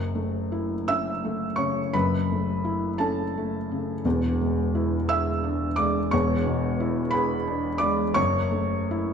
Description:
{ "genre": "neoclassical minimalist piano", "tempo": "57 BPM (dotted quarters)", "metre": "6/8", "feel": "rubato", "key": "F# minor", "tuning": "A4 = 441 Hz", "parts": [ { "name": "felt-muted upright piano", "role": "solo", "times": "0.0-9.1 s", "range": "E1 to E6", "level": "-23 LUFS", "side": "equal", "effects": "none" } ], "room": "wet recital hall reverb, RT60 1.4 s", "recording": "none", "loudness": "-23 LUFS", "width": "side -7 dB against mid", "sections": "0.0-9.1 A section", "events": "none", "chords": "0.0 F#m7; 4.0 E7; 8.2 F#m7" }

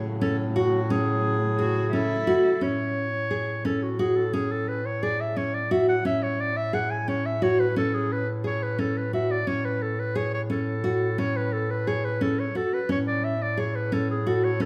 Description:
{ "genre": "contemporary instrumental, chamber music in an uneven meter", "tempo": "175 BPM (eighths)", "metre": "5/8", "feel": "straight", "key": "A major", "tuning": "A4 = 440 Hz", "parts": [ { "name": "dark symphonic string section", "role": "sustained chords", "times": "0.0-2.6 s", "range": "C#3 to A3", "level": "-38 LUFS", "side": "equal", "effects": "none" }, { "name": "nylon-string guitar", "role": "arpeggios", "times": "0.0-14.7 s", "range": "C#4 to G#4", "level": "-29 LUFS", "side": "equal", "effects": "none" }, { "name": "warm bass clarinet", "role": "bass", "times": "0.0-14.7 s", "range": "A2", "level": "-32 LUFS", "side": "equal", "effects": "none" }, { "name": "clear clarinet", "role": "melody", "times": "0.2-14.7 s", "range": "F#4 to G#5", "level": "-31 LUFS", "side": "equal", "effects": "none" }, { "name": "dark cello", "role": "second line", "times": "1.6-2.6 s", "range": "E4 to F#4", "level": "-33 LUFS", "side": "equal", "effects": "none" } ], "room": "wet recital hall reverb, RT60 1.6 s", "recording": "none", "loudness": "-26 LUFS", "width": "mono", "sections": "0.0-2.6 A section; 2.6-14.7 B section", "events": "none", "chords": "0.0 Amaj7" }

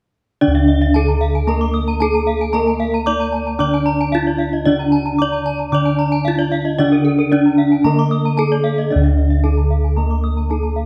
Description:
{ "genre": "Balinese gamelan", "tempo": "113 BPM", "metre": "4/4", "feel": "straight", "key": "D pelog", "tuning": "A4 = 435 Hz", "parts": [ { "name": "gamelan-type bronze metallophone", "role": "melody", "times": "0.4-10.9 s", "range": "D4 to D5", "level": "-21 LUFS", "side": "equal", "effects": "none" }, { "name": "gamelan-type bronze metallophone", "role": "accompaniment", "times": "0.4-10.9 s", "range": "D3 to D4", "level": "-25 LUFS", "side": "equal", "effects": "none" }, { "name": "gamelan-type bronze metallophone", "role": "arpeggios", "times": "0.4-10.9 s", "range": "A4-30c to Eb6+20c", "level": "-27 LUFS", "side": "equal", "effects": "none" }, { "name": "gamelan-type bossed gongs", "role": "bass", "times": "0.4-10.9 s", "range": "D2 to Bb4-20c", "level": "-20 LUFS", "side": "equal", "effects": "none" }, { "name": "gamelan-type bronze metallophone", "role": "arpeggios", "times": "0.6-10.8 s", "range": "Bb4-20c to D6", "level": "-30 LUFS", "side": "equal", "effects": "none" } ], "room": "moderate recital hall reverb, RT60 1.5 s", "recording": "none", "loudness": "-16 LUFS", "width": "mono", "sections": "0.4-10.9 A section", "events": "none", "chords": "none" }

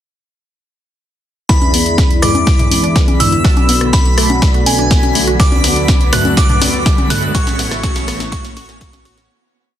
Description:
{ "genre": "progressive house", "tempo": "123 BPM", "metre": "4/4", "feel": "straight", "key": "unclear", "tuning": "A4 = 440 Hz", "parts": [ { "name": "glassy synth bell", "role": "melody", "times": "1.5-9.3 s", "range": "G#5 to F#6", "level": "-20 LUFS", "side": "right 1 dB", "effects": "chorus, tape echo" }, { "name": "airy dreamy lead", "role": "second line", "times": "1.5-9.3 s", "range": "G#5 to F#6", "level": "-25 LUFS", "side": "equal", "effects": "chorus, sidechain pumping, tape echo" }, { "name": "warm analog pad", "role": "sustained chords", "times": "1.5-9.3 s", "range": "C#3 to F#4", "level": "-23 LUFS", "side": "right 1 dB", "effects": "chorus, sidechain pumping" }, { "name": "wide unison pluck", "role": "arpeggios", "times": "1.5-9.3 s", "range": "G#3 to F#4", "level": "-23 LUFS", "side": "equal", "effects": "phaser, sidechain pumping, tape echo" }, { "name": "chorused polysynth", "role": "stabs", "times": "1.5-9.3 s", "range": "B3 to D5", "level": "-23 LUFS", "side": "left 2 dB", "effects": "phaser, vintage 12-bit sampler grit, sidechain pumping, tape echo" }, { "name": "fat analog bass", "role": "bass", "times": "1.5-9.3 s", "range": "A1 to E2", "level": "-22 LUFS", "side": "equal", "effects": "sidechain pumping" }, { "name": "deep house drum kit", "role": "drums", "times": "1.5-9.3 s", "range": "hi-hat, snare drum", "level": "-19 LUFS", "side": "left 1 dB", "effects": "high-pass filter on snare, sidechain pumping on hats, high-pass filter on hats, high-pass filter on room" }, { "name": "electronic kick drum", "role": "drums", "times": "1.5-8.9 s", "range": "none", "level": "-13 LUFS", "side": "equal", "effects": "none" }, { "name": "riser", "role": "sound effects", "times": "4.1-9.3 s", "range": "none", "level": "-30 LUFS", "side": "right 2 dB", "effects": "none" }, { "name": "twinkling granular texture", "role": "texture", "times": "2.2-9.3 s", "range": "B5", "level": "-28 LUFS", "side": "right 1 dB", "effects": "built-in reverb, sidechain pumping" }, { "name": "punchy analog drum machine", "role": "percussion", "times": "1.6-9.0 s", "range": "congas, rim click, toms", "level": "-21 LUFS", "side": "left 2 dB", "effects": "sidechain pumping on perc, soft clipping on snare, sidechain pumping on snare, sidechain pumping on toms" } ], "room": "light reverb, digital ambience", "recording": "dense, heavily limited modern master", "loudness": "-10 LUFS", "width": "side -11 dB against mid", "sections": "1.5-9.3 build", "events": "build-up 1.5-9.3; drum fill 1.5-9.3; filter sweep on synth pluck 1.5-9.3; filter sweep on analog polysynth 1.5-9.3; filter sweep on analog synth pad 1.5-9.3; fade-out 6.7-9.3", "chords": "1.5 E7; 3.4 Bm7; 5.4 D6; 7.3 A" }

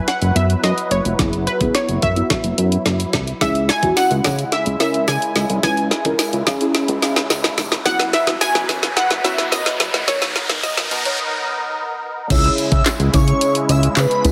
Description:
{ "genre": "dance-pop", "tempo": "108 BPM", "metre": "4/4", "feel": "straight", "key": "C# dorian", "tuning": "A4 = 439 Hz", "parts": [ { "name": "analog pluck", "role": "melody", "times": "0.0-11.2 s", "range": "B4 to G#5", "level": "-24 LUFS", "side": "equal", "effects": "chorus, delay" }, { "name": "filtered supersaw swell", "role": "sustained chords", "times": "0.0-14.3 s", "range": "C#3 to B4", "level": "-29 LUFS", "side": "equal", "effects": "sidechain pumping" }, { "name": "smooth R&B drum kit", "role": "drums", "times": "0.1-14.3 s", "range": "crash cymbal, handclaps, hi-hat, kick drum, snare drum", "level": "-22 LUFS", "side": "equal", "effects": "soft clipping on snare" }, { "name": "chorused synth bass", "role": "bass", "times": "0.2-14.3 s", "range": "E#1 to C#3", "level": "-23 LUFS", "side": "equal", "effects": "sidechain pumping" }, { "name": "deep mellow chord stab", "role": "accompaniment", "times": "0.4-14.3 s", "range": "B3 to C#5", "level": "-26 LUFS", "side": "equal", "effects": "chorus, sidechain pumping" }, { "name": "tambourine", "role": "percussion", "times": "3.4-14.3 s", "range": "none", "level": "-35 LUFS", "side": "equal", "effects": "none" }, { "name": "riser", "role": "sound effects", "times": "5.9-11.2 s", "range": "none", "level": "-30 LUFS", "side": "equal", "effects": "none" }, { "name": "airy dreamy lead", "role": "melody", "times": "12.3-14.3 s", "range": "B4 to E5", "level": "-22 LUFS", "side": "equal", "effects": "chorus, sidechain pumping" } ], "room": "light reverb", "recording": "dense, heavily limited modern master, high-pass filter", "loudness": "-18 LUFS", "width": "mono", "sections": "0.0-12.3 A section; 12.3-14.3 B section", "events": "build-up 0.0-12.3; drum fill 0.0-11.2; filter sweep 0.0-12.3; riser 5.9-12.3; break 11.2-12.3; drop 12.3-14.3", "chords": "0.0 F#7sus4; 3.4 C#m; 7.9 F#7sus4; 10.1 Bmaj7; 12.3 C#m" }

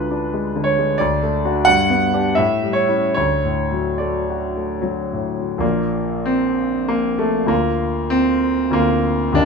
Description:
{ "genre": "classical, romantic character piece for solo piano", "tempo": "70-100 BPM", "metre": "3/4", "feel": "rubato", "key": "D major, Bb major from 5.6 s", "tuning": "A4 = 437 Hz", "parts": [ { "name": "clear concert grand piano", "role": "solo", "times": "0.0-9.4 s", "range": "Bb1 to F#5", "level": "-16 LUFS", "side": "equal", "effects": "none" } ], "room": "moderate large studio reverb, RT60 1.3 s", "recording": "minimal, uncompressed stereo recording", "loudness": "-16 LUFS", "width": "side -5 dB against mid", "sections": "0.0-5.6 A section; 5.6-9.4 B section", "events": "none", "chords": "0.0 Ddim7; 1.0 D; 1.7 G; 2.4 A7; 3.2 D; 5.6 Bb; 7.5 Bb/D" }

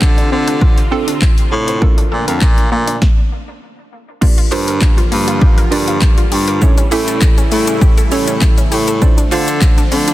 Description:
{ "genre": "dance-pop", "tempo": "100 BPM", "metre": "4/4", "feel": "straight", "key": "G dorian", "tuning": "A4 = 439 Hz", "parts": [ { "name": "supersaw pad", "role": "sustained chords", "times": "0.0-10.1 s", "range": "C3 to F4", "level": "-22 LUFS", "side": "equal", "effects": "phaser, sidechain pumping" }, { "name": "clear baritone saxophone", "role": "bass", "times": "0.0-10.1 s", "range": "F2 to D3", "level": "-17 LUFS", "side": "equal", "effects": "sidechain pumping" }, { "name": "house drum kit", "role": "drums", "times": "0.0-10.1 s", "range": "crash cymbal, handclaps, hi-hat, kick drum, shaker, snare drum", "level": "-12 LUFS", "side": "equal", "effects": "none" }, { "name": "wide unison pluck", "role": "arpeggios", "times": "0.2-10.1 s", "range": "A3 to C5", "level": "-24 LUFS", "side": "left 2 dB", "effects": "sidechain pumping, dub echo" }, { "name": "hollow square pluck", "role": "accompaniment", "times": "0.9-9.9 s", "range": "C4 to F5", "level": "-21 LUFS", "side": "right 6 dB", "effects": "chorus, sidechain pumping" }, { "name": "group handclap", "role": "percussion", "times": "4.5-9.8 s", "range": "none", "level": "-32 LUFS", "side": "left 6 dB", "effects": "none" } ], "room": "little or no reverb", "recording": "dense, heavily limited modern master", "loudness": "-10 LUFS", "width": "side -15 dB against mid", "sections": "0.0-4.2 A section; 4.2-10.1 B section", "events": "stop 3.0-4.2", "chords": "0.0 Dm7; 1.8 Bbmaj7; 4.2 Gm7; 6.6 A7; 9.0 Dm7" }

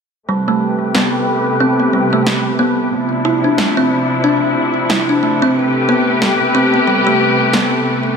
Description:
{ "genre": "organic downtempo", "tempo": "91 BPM", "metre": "4/4", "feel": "swing 58% on 16ths", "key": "A minor", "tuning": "A4 = 439 Hz", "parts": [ { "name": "rich symphonic string section", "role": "sustained chords", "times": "0.3-8.2 s", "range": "C3 to B4", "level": "-16 LUFS", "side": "left 1 dB", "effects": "low-pass filter" }, { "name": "kalimba", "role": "arpeggios", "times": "0.3-8.2 s", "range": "G3 to E4", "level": "-15 LUFS", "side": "equal", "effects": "vintage 12-bit sampler grit, low-pass filter, ping-pong delay" }, { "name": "electronic snare drum", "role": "drums", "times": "0.9-7.7 s", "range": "none", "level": "-20 LUFS", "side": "right 1 dB", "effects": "overdrive" } ], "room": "moderate lush hall reverb, RT60 2.4 s", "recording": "none", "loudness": "-12 LUFS", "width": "side -6 dB against mid", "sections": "0.3-8.2 A section", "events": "filter sweep on kalimba 0.3-8.2; filter sweep on string section 0.3-8.2", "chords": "0.3 Am9; 2.9 Dm9; 5.6 Am9" }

